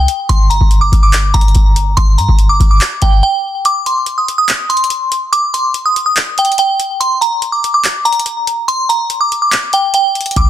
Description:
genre	hip hop, trap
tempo	143 BPM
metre	4/4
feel	half-time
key	unclear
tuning	A4 = 440 Hz
part	glassy synth bell	melody	0.0-10.5 s	G5 to Eb6	-13 LUFS	right 1 dB	chorus, tremolo, ping-pong delay
part	clean 808-style bass	bass	0.0-3.2, 10.4-10.5 s	G1 to G2	-13 LUFS	equal	none
part	booming analog drum machine	drums	0.1-10.5 s	handclaps, hi-hat, kick drum	-13 LUFS	equal	none
room	digital ambience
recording	dense, heavily limited modern master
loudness	-10 LUFS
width	side -12 dB against mid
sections	0.0-10.5 A section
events	break 3.2-3.6, 3.6-10.4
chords	0.3 Gm; 3.6 N.C.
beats	| 0.29 0.71 1.13 1.55 | 1.97 2.39 2.81 3.23 | 3.65 4.07 4.49 4.91 | 5.33 5.75 6.17 6.59 | 7.01 7.43 7.85 8.27 | 8.69 9.11 9.52 9.94 | 10.36

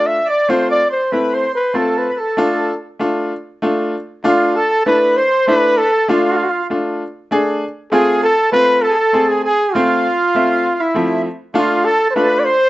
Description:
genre	klezmer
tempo	98 BPM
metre	3/4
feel	straight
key	D dorian sharp4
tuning	A4 = 441 Hz
part	breathy cornet	melody	0.0-12.7 s	E4 to E5	-14 LUFS	equal	slapback echo
part	accordion	second line	0.0-12.7 s	E4 to E5	-21 LUFS	right 4 dB	slapback echo
part	bright upright piano	accompaniment	0.0-12.5 s	F3 to E5	-18 LUFS	left 1 dB	none
room	little or no reverb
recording	recorded outdoors, with no room sound, nothing above 7.9 kHz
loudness	-13 LUFS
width	side -17 dB against mid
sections	0.0-4.2 A section; 4.2-12.7 B section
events	speeding up 0.0-12.7; cornet solo 0.0-4.2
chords	0.5 F; 2.4 Dm; 7.9 F; 11.6 Dm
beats	| 0.48 1.12 1.75 | 2.37 3.00 3.62 | 4.24 4.86 5.48 | 6.09 6.71 7.32 | 7.93 8.54 9.15 | 9.75 10.36 10.96 | 11.56 12.16

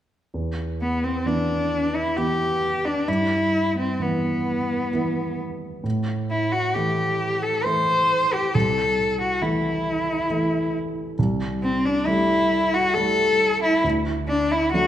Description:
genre	classical, romantic duo for cello and grand piano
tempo	67 BPM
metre	3/4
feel	rubato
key	E minor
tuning	A4 = 436 Hz
part	warm grand piano	accompaniment	0.3-14.9 s	C2 to E4	-25 LUFS	right 1 dB	none
part	rich cello	melody	0.8-14.9 s	B3 to C5	-21 LUFS	left 1 dB	none
room	wet recital hall reverb, RT60 1.5 s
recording	none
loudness	-20 LUFS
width	side -11 dB against mid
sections	0.3-14.9 A section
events	none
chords	0.3 E5; 3.1 Em/G; 5.8 A5; 8.5 Am/C; 11.2 Am7/C; 13.8 D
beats	| 0.34 1.26 2.17 | 3.08 4.00 4.93 | 5.84 6.75 7.66 | 8.54 9.42 10.29 | 11.18 12.06 12.94 | 13.84 14.73

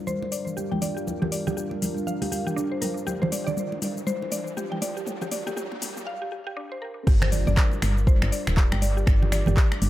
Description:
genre	afro house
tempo	120 BPM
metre	4/4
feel	swing 60% on 16ths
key	G minor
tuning	A4 = 440 Hz
part	warm analog pad	sustained chords	0.0-9.9 s	G3 to F5	-34 LUFS	left 1 dB	chorus, sidechain pumping
part	riser and impact	sound effects	2.0-9.1 s	none	-38 LUFS	equal	none
part	mallet-like synth pluck	arpeggios	0.1-9.7 s	D4 to G5	-32 LUFS	equal	chorus, sidechain pumping, analog delay
part	afro-pop drum kit	drums	0.1-9.9 s	crash cymbal, finger snaps, handclaps, hi-hat, shaker, toms	-30 LUFS	left 2 dB	dub echo
part	congas	percussion	0.1-9.9 s	none	-32 LUFS	right 2 dB	none
part	woody FM bass	bass	7.1-9.9 s	D1 to G1	-23 LUFS	equal	sidechain pumping
part	electronic kick drum	drums	7.1-9.7 s	none	-20 LUFS	equal	none
room	light reverb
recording	echo-heavy mix, high-pass filter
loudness	-23 LUFS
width	side -15 dB against mid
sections	0.0-7.1 A section; 7.1-9.9 B section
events	build-up 0.0-7.1; drum fill 0.0-6.1; filter sweep on analog synth pad 0.0-7.1; filter sweep 0.0-7.1; riser 2.0-6.1; break 6.1-7.1; drop 7.1-9.9; impact 7.1-9.1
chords	0.0 Gm7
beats	0.07 0.57 | 1.07 1.57 2.07 2.57 | 3.07 3.57 4.07 4.57 | 5.07 5.57 6.07 6.57 | 7.07 7.57 8.07 8.57 | 9.07 9.57

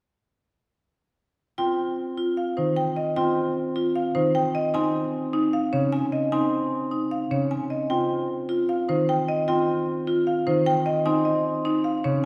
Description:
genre	classical, minimalist pattern music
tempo	152 BPM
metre	4/4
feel	straight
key	F minor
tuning	A4 = 440 Hz
part	marimba with hard mallets	melody	1.6-12.3 s	C5 to Ab5	-29 LUFS	equal	none
part	concert harp	accompaniment	1.6-12.3 s	Db3 to C4	-30 LUFS	equal	none
part	marimba with hard mallets	arpeggios	1.6-12.3 s	Db4 to F4	-28 LUFS	equal	none
room	wet scoring stage reverb, RT60 2.0 s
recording	heard from further back in the room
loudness	-24 LUFS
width	mono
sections	1.6-12.3 A section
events	none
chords	1.6 F5; 4.7 Dbsus2; 7.9 F5; 11.1 Dbadd9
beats	| 1.58 1.98 2.37 2.77 | 3.16 3.56 3.95 4.35 | 4.74 5.14 5.53 5.92 | 6.32 6.71 7.11 7.50 | 7.90 8.29 8.69 9.08 | 9.48 9.87 10.27 10.66 | 11.06 11.45 11.85 12.24

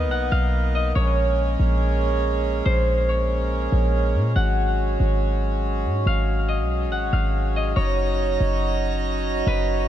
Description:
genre	hip hop, atmospheric cloud-rap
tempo	141 BPM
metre	4/4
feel	half-time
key	Bb phrygian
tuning	A4 = 440 Hz
part	concert harp	melody	0.0-9.9 s	Cb5 to F#5	-28 LUFS	left 1 dB	low-pass filter, tape echo
part	pedal harmonium	sustained chords	0.0-9.9 s	Gb3 to Bb5	-26 LUFS	right 3 dB	stereo widening
part	warm 808-style bass	bass	0.0-9.9 s	Gb1 to Bb2	-22 LUFS	equal	none
room	small room ambience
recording	none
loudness	-20 LUFS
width	side -11 dB against mid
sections	0.0-9.9 A section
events	none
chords	0.0 Bmaj7; 1.0 Bbm7; 4.4 Ab7sus4; 7.8 Gb6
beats	0.11 0.53 | 0.96 1.38 1.81 2.23 | 2.66 3.09 3.51 3.94 | 4.36 4.79 5.21 5.64 | 6.07 6.49 6.92 7.34 | 7.77 8.19 8.62 9.04 | 9.47

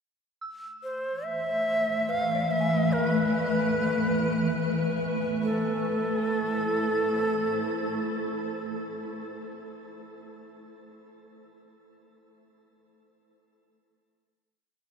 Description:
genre	ambient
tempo	free time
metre	none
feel	none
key	A harmonic minor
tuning	A4 = 440 Hz
part	granular cloud pad	sustained chords	1.6-8.7 s	E3 to B5	-29 LUFS	left 1 dB	built-in reverb, wide subtle chorus
part	soft synth bell	arpeggios	0.4-10.5 s	B4 to E6	-44 LUFS	equal	chorus, phaser, shimmer reverb, ping-pong delay
part	analog drone	drone	1.3-8.7 s	A3	-37 LUFS	right 2 dB	none
part	bright reedy shakuhachi	melody	0.8-8.7 s	A4 to F5	-28 LUFS	right 1 dB	shimmer reverb, ping-pong delay
room	wet huge ambient reverb, RT60 8.8 s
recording	dreamy mix soaked in reverb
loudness	-25 LUFS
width	side -6 dB against mid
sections	0.4-5.4 A section; 5.4-8.0 final chord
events	fade-out on synth bell 0.4-5.4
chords	0.4 E; 5.4 Am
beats	free time

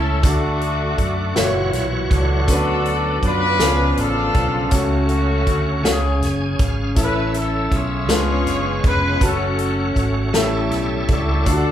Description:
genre	slow gospel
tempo	53 BPM (dotted quarters)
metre	6/8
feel	straight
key	F# minor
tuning	A4 = 441 Hz
part	clear horn section	melody	0.0-11.7 s	A3 to C#5	-22 LUFS	left 2 dB	none
part	clear concert grand piano	accompaniment	0.0-11.7 s	A2 to G#5	-24 LUFS	left 1 dB	none
part	bright tonewheel organ	sustained chords	0.0-11.7 s	C#3 to G#5	-25 LUFS	right 1 dB	slow rotary speaker, overdrive, chorus vibrato
part	fingered electric bass	bass	0.0-11.7 s	E#1 to F#2	-22 LUFS	equal	none
part	natural country drum kit	drums	0.2-11.6 s	hi-hat, kick drum, snare drum	-20 LUFS	equal	none
room	wet large studio reverb, RT60 1.2 s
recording	band playing live in one room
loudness	-16 LUFS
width	side -10 dB against mid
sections	0.0-11.7 A section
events	tonewheel organ fill 5.8-7.0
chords	0.2 D; 1.4 F#7; 2.5 Bm/D; 3.6 C#7b9; 4.7 F#m/C#; 5.8 C#; 7.0 A; 8.1 C#7b9; 9.2 F#m; 10.3 A7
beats	| 0.23 1.35 | 2.48 3.60 | 4.72 5.84 | 6.97 8.09 | 9.21 10.34 | 11.46

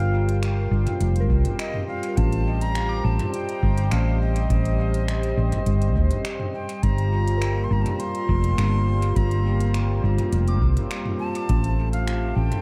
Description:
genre	ambient dub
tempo	103 BPM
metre	4/4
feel	straight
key	G minor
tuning	A4 = 445 Hz
part	breathy bright concert flute	melody	0.0-12.6 s	Eb5 to C6	-35 LUFS	equal	tape echo
part	warm analog pad	sustained chords	0.0-12.6 s	G3 to G5	-31 LUFS	equal	chorus
part	hollow-body short-scale fingered electric bass	bass	0.0-12.5 s	F1 to D2	-24 LUFS	equal	none
part	drifting glass-harmonics texture	texture	0.0-12.6 s	C4 to C5	-41 LUFS	equal	chorus, built-in reverb
part	organic electronic drum kit	drums	0.3-12.6 s	finger snaps, hi-hat, toms	-35 LUFS	equal	overdrive, dub echo
part	soft synth bell	arpeggios	1.2-12.6 s	Bb4 to D6	-42 LUFS	equal	chorus, phaser, tape echo
part	electronic kick drum	drums	1.3-11.6 s	none	-29 LUFS	equal	none
room	moderate plate reverb, RT60 2.3 s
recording	dreamy mix soaked in reverb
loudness	-23 LUFS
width	mono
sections	0.0-12.6 A section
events	none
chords	0.0 Gm7; 2.2 Am7b5; 6.8 Gm7; 11.5 Am7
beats	0.42 1.01 1.59 | 2.17 2.75 3.34 3.92 | 4.50 5.08 5.67 6.25 | 6.83 7.42 8.00 8.58 | 9.16 9.74 10.33 10.91 | 11.49 12.07

